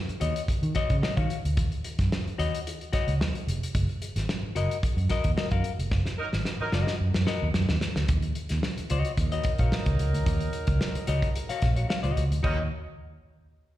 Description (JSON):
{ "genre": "funk", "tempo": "110 BPM", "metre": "4/4", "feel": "straight", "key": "Eb minor", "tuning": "A4 = 440 Hz", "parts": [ { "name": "vintage muted fingered electric bass", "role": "bass", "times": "0.1-12.7 s", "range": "F1 to Eb3", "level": "-27 LUFS", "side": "equal", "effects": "none" }, { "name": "warm soul drum kit", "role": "drums", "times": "0.1-12.6 s", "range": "crash cymbal, hi-hat, kick drum, snare drum", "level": "-29 LUFS", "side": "equal", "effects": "none" }, { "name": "semi-hollow electric guitar", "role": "accompaniment", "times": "0.2-12.6 s", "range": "Gb4 to F5", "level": "-32 LUFS", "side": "left 6 dB", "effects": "slapback echo" }, { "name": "mellow horn section", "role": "second line", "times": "6.2-12.6 s", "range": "Gb3 to Bb4", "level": "-35 LUFS", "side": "right 2 dB", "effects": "slapback echo" } ], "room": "little or no reverb", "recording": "live gig heard through the venue's PA, recital hall reverb", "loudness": "-25 LUFS", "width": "side -14 dB against mid", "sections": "0.0-8.1 A section; 8.1-12.4 B section; 12.4-13.8 C section", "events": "drum fill 5.9-8.1; band accent 5.9-8.1", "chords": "0.0 Ebm7; 3.7 Gb6; 8.1 Ebm7" }